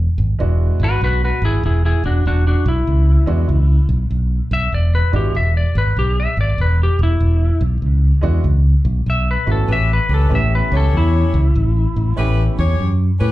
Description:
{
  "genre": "blues",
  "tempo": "97 BPM",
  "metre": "4/4",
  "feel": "swing 65% on 8ths",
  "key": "unclear",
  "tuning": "A4 = 440 Hz",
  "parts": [
    { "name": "fingered electric bass", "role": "bass", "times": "0.0-13.3 s", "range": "E1 to A2", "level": "-15 LUFS", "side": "equal", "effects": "none" },
    { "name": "clear concert grand piano", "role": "accompaniment", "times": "0.4-12.5 s", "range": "G#3 to G4", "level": "-26 LUFS", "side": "right 6 dB", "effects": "slapback echo" },
    { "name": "clean lap steel guitar", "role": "melody", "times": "0.8-12.8 s", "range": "D4 to E5", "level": "-22 LUFS", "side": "left 2 dB", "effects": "slapback echo, tape echo" },
    { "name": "clear saxophone section", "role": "stabs", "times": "9.7-13.3 s", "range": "C#4 to C#5", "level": "-25 LUFS", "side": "left 3 dB", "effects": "slapback echo" }
  ],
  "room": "little or no reverb",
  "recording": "live gig heard through the venue's PA, club reverb",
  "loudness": "-14 LUFS",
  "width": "side -16 dB against mid",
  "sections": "0.0-13.3 A section",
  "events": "electric slide guitar solo 0.0-13.3",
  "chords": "0.0 E9; 9.7 A9"
}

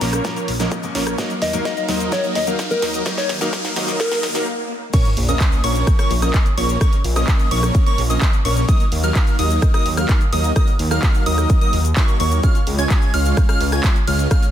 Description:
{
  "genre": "EDM, festival progressive house",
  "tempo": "128 BPM",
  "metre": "4/4",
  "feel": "straight",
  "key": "Bb minor",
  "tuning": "A4 = 443 Hz",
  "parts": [
    { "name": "soft struck synth lead", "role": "melody", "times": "0.0-4.5 s", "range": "Bb4 to Bb5", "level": "-24 LUFS", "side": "left 2 dB", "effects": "chorus, tremolo, dub echo" },
    { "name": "picked steel-string acoustic guitar", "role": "accompaniment", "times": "0.0-4.5 s", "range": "Bb2 to C5", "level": "-28 LUFS", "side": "left 2 dB", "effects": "sidechain pumping, dub echo" },
    { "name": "supersaw chords", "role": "riff", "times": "0.0-14.5 s", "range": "F3 to Ab5", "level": "-24 LUFS", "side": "equal", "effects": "sidechain pumping, low-pass filter, dub echo" },
    { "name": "wide detuned saw bass", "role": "bass", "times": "0.0-14.3 s", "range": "Bb1 to Eb2", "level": "-20 LUFS", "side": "equal", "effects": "chorus, sidechain pumping" },
    { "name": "big-room dance drum kit", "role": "drums", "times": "0.0-14.5 s", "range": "crash cymbal, handclaps, hi-hat, rim click, shaker, snare drum", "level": "-26 LUFS", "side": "equal", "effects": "high-pass filter on hats, high-pass filter on toms, high-pass filter on snare, high-pass filter on perc, high-pass filter on cymbals" },
    { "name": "riser, swell and sub drop", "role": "sound effects", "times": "0.0-6.8 s", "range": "none", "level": "-28 LUFS", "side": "equal", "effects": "none" },
    { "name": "electronic kick drum", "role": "drums", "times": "0.2-14.4 s", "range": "none", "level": "-16 LUFS", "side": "equal", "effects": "high-pass filter on kick" },
    { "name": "plucky unison lead", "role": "arpeggios", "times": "4.9-14.5 s", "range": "Db6 to Ab6", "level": "-24 LUFS", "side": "right 1 dB", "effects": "sidechain pumping, dub echo" }
  ],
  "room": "light reverb",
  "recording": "dense, heavily limited modern master, high-pass filter",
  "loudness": "-15 LUFS",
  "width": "side -11 dB against mid",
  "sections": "0.0-4.9 A section; 4.9-14.5 B section",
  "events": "build-up 0.0-4.9; drum fill 0.0-4.5; riser 0.0-4.5; filter sweep on supersaw synth 0.0-4.9; swell 4.0-4.9; stop 4.5-4.9; drop 4.9-14.5; impact 4.9-6.8",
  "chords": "0.0 Bbm; 1.2 Ebm; 4.9 Bbm; 8.7 Ebm; 12.4 Db"
}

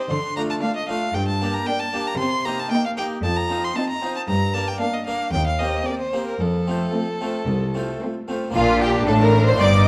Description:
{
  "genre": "classical, baroque-style concerto movement with solo episodes",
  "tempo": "114 BPM",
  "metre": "4/4",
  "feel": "straight",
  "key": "Bb major",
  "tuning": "A4 = 440 Hz",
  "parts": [
    { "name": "clear violin", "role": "melody", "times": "0.0-9.9 s", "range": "F4 to C6", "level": "-28 LUFS", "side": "equal", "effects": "none" },
    { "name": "harpsichord", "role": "accompaniment", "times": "0.0-9.9 s", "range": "C2 to Bb4", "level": "-29 LUFS", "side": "equal", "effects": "none" },
    { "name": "rich symphonic cello section", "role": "bass", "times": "0.1-9.9 s", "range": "C2 to D3", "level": "-25 LUFS", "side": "equal", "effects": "none" },
    { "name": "rich chamber violin section", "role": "melody", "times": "0.6-9.9 s", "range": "F4 to D6", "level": "-29 LUFS", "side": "equal", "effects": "none" },
    { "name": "rich chamber violin section", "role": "second line", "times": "0.6-9.9 s", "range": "C4 to D5", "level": "-28 LUFS", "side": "equal", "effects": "none" },
    { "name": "rich symphonic viola section", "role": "accompaniment", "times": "0.6-9.9 s", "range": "A3 to Eb4", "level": "-29 LUFS", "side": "equal", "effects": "none" },
    { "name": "warm chamber double bass section", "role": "bass", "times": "8.5-9.9 s", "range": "G1 to Bb1", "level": "-25 LUFS", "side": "equal", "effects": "none" }
  ],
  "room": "moderate recital hall reverb, RT60 1.4 s",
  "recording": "dark, warm production",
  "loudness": "-22 LUFS",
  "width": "mono",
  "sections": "0.0-8.5 A section; 8.5-9.9 B section",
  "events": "none",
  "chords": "0.1 Dm; 1.1 Gm; 2.2 Cm7; 3.2 F5; 4.3 Gm; 5.3 Cm7/Eb; 6.4 F; 8.5 Bb"
}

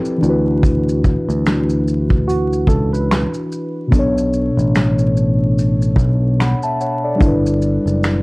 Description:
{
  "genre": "lo-fi hip hop",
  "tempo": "73 BPM",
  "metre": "4/4",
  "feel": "swing 57% on 16ths",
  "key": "unclear",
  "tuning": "A4 = 440 Hz",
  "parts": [
    { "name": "muted felt-like synth keys", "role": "accompaniment", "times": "0.0-8.2 s", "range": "B2 to B5", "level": "-18 LUFS", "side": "left 1 dB", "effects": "chorus" },
    { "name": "vintage brush drum kit", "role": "drums", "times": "0.1-8.2 s", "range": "finger snaps, hi-hat, kick drum, shaker, snare drum", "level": "-17 LUFS", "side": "equal", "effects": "none" },
    { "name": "picked electric bass", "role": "bass", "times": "0.2-8.2 s", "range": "F#1 to D2", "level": "-17 LUFS", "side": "equal", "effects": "none" },
    { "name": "tine electric piano", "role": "second line", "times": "2.3-3.9 s", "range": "F#4 to B4", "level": "-22 LUFS", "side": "right 3 dB", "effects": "medium stereo tremolo, analog delay" }
  ],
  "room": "light reverb",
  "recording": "dark, warm production, vinyl crackle",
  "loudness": "-14 LUFS",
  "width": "side -25 dB against mid",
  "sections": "0.0-3.9 A section; 3.9-8.2 B section",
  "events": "none",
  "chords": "0.2 D69; 3.9 Bm7; 7.2 G6"
}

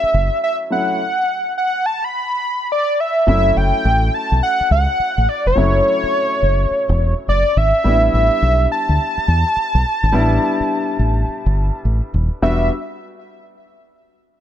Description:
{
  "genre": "R&B, new jack swing",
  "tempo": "105 BPM",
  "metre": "4/4",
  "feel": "swing 64% on 16ths",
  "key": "unclear",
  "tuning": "A4 = 440 Hz",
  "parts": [
    { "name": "wide unison lead", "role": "melody", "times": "0.0-12.7 s", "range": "C#5 to B5", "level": "-17 LUFS", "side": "equal", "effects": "none" },
    { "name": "warm grand piano", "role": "accompaniment", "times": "0.0-12.7 s", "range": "F#3 to F#4", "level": "-23 LUFS", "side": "left 2 dB", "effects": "none" },
    { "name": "deep dub fingered electric bass", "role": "bass", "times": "0.0-12.7 s", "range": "D#1 to E2", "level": "-16 LUFS", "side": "equal", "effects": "none" }
  ],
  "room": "light reverb, small room ambience",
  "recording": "none",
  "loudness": "-15 LUFS",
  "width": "side -11 dB against mid",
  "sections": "0.0-3.3 A section; 3.3-12.4 B section; 12.4-14.4 C section",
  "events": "none",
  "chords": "0.0 F#m7; 1.0 N.C.; 3.3 F#m7; 7.8 A9sus4; 12.4 Em7"
}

